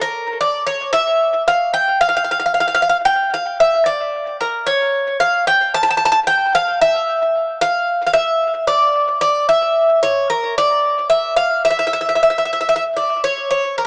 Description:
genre	greek folk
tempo	112 BPM (eighths)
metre	9/8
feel	straight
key	unclear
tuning	A4 = 440 Hz
part	Greek bouzouki	solo	0.0-13.9 s	Bb4 to A5	-17 LUFS	equal	analog delay
room	moderate small room reverb, RT60 0.5 s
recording	small speaker sound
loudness	-17 LUFS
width	mono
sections	0.0-13.9 A section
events	none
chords	none

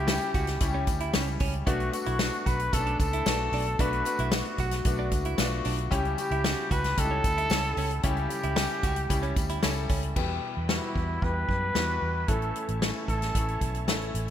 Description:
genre	piano-driven pop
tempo	113 BPM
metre	4/4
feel	straight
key	unclear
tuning	A4 = 440 Hz
part	mellow trumpet	melody	0.0-13.8 s	E4 to B4	-32 LUFS	equal	none
part	bright concert grand piano	accompaniment	0.0-14.3 s	A2 to A4	-33 LUFS	left 4 dB	none
part	direct-recorded clean electric guitar	riff	0.0-10.0 s	C#4 to F#4	-37 LUFS	right 7 dB	wide subtle chorus
part	vintage muted fingered electric bass	bass	0.0-14.3 s	A1 to F#2	-31 LUFS	right 1 dB	none
part	natural country drum kit	drums	0.1-14.3 s	crash cymbal, hi-hat, kick drum, snare drum	-29 LUFS	equal	none
part	tambourine	percussion	0.1-9.8 s	none	-44 LUFS	left 4 dB	none
part	bright tonewheel organ	sustained chords	10.2-14.3 s	E3 to C#4	-40 LUFS	right 1 dB	chorus vibrato, slow rotary speaker
room	light reverb, small room reverb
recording	bright 1980s-style digital production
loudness	-25 LUFS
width	side -10 dB against mid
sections	0.0-10.2 A section; 10.2-14.3 B section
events	none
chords	0.0 C#dim; 1.7 Bm7; 5.9 C#dim; 10.2 Em; 12.3 A

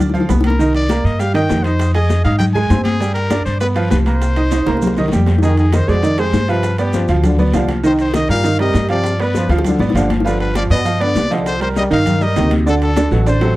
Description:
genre	latin, salsa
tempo	199 BPM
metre	4/4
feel	straight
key	C minor, C harmonic minor from 5.4 s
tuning	A4 = 440 Hz
part	bright upright piano	accompaniment	0.0-13.6 s	C3 to Ab6	-18 LUFS	right 3 dB	none
part	upright bass	bass	0.0-13.5 s	G1 to Ab2	-17 LUFS	equal	none
part	bongos	percussion	0.0-13.6 s	none	-26 LUFS	left 5 dB	none
part	congas	percussion	0.0-13.6 s	none	-21 LUFS	left 2 dB	none
part	maracas	percussion	0.0-13.6 s	none	-39 LUFS	right 6 dB	none
part	timbales	percussion	0.3-13.6 s	none	-27 LUFS	right 6 dB	none
part	bright trumpet	melody	0.5-13.6 s	G4 to Ab5	-22 LUFS	left 2 dB	none
part	guiro	percussion	0.6-13.6 s	none	-36 LUFS	left 6 dB	none
part	warm trombone section	second line	5.4-13.6 s	Bb2 to G3	-22 LUFS	left 2 dB	none
room	light reverb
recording	dry, close 1970s-style studio recording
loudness	-13 LUFS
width	side -17 dB against mid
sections	0.0-5.4 A section; 5.4-13.6 B section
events	drum fill 0.0-0.6, 4.5-5.4, 9.5-10.3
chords	0.0 G7 (rootless); 0.6 Cm7; 1.8 Fm7; 3.0 G5; 3.6 G7; 4.2 Cm7; 5.4 Fm7; 6.6 G7; 7.8 Cm7; 9.0 G7; 11.5 Cm7; 12.7 D7

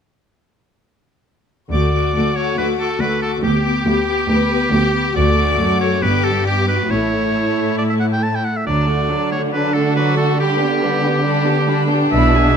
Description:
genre	quick classical-period movement for symphony orchestra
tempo	139 BPM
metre	4/4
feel	straight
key	D major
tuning	A4 = 439 Hz
part	rich chamber violin section	melody	1.7-12.6 s	F#5 to D6	-29 LUFS	left 5 dB	none
part	bright oboe	second line	1.7-12.6 s	G4 to A5	-21 LUFS	right 1 dB	none
part	rich chamber violin section	second line	1.7-12.5 s	B3 to B4	-23 LUFS	left 1 dB	none
part	rich chamber viola section	accompaniment	1.7-12.5 s	F#3 to G#4	-21 LUFS	left 1 dB	none
part	rich studio cello section	bass	1.7-12.6 s	D2 to D3	-20 LUFS	right 1 dB	none
part	rich symphonic double bass section	bass	1.7-9.1, 12.1-12.5 s	G1 to D2	-20 LUFS	right 2 dB	none
room	light reverb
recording	close, detailed microphones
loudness	-15 LUFS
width	side -7 dB against mid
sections	1.7-12.6 A section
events	none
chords	1.7 D; 3.4 G/D; 5.2 D; 6.0 G; 6.9 A; 8.7 D; 10.4 G/D

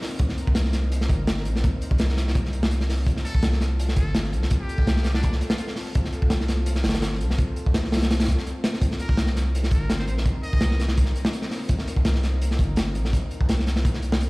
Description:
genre	drum and bass, jungle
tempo	167 BPM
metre	4/4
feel	swing 54% on 16ths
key	C dorian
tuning	A4 = 440 Hz
part	airy breathy pad	sustained chords	0.0-14.3 s	Bb3 to Bb4	-34 LUFS	left 1 dB	chorus
part	crunchy breakbeat drum kit	drums	0.0-14.3 s	hi-hat, kick drum, snare drum	-23 LUFS	equal	none
part	long sustained 808-style bass	bass	0.2-14.3 s	G1 to C2	-24 LUFS	equal	none
part	trumpet with metal mute	melody	3.2-5.6, 9.0-10.8 s	D4 to Eb5	-37 LUFS	equal	dub echo
room	small room reverb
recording	played on a big sound system in a bare room, large studio reverb, vinyl crackle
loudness	-21 LUFS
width	side -24 dB against mid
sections	0.0-14.3 A section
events	kick drops out 8.1-8.8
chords	0.0 Cm7; 3.1 Gm11; 8.8 Cm7

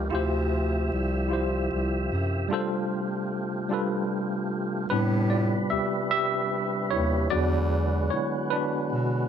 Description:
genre	slow six-eight R&B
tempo	50 BPM (dotted quarters)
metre	6/8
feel	straight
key	unclear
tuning	A4 = 440 Hz
part	tine electric piano	accompaniment	0.0-9.3 s	F#3 to E5	-27 LUFS	equal	overdrive, fast stereo tremolo
part	tonewheel organ	sustained chords	0.0-9.3 s	C3 to E5	-31 LUFS	right 1 dB	chorus vibrato, stopped rotary speaker
part	breathy bass clarinet	bass	0.0-9.3 s	C2 to B2	-26 LUFS	equal	none
room	light reverb, small room ambience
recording	none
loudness	-24 LUFS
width	side -8 dB against mid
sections	0.0-4.9 A section; 4.9-9.3 B section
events	break 2.5-4.9; tine electric piano solo 4.9-9.3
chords	0.1 Dm11; 2.5 G9sus4; 4.9 Am11; 7.3 E13

